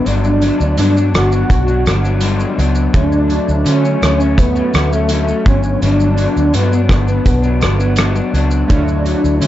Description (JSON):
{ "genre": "indie pop, bedroom pop", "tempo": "83 BPM", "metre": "4/4", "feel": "straight", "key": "unclear", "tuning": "A4 = 440 Hz", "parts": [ { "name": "trombone with bucket mute", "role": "melody", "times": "0.0-9.5 s", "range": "A3 to F#4", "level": "-17 LUFS", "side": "equal", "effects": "ensemble chorus, tape echo" }, { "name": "electric guitar through a small old amp", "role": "accompaniment", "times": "0.0-9.5 s", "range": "G2 to D4", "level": "-18 LUFS", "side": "left 3 dB", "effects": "analog chorus, vibrato effect" }, { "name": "vintage muted fingered electric bass", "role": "bass", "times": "0.1-9.5 s", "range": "G1 to D3", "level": "-16 LUFS", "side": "equal", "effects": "none" }, { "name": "loose indie drum kit", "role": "drums", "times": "0.1-9.5 s", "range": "hi-hat, kick drum, rim click, shaker", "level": "-18 LUFS", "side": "equal", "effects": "none" }, { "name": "chorused retro synth keys", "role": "accompaniment", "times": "8.7-9.5 s", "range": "A3 to C#5", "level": "-24 LUFS", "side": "right 6 dB", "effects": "cassette tape" } ], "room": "light reverb, small room ambience", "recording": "dark, warm production, nothing above 7.6 kHz", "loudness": "-11 LUFS", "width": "side -13 dB against mid", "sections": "0.0-9.5 A section", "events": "none", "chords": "0.0 Gmaj7; 2.9 Dmaj7; 5.5 Gmaj7; 8.7 Dmaj7" }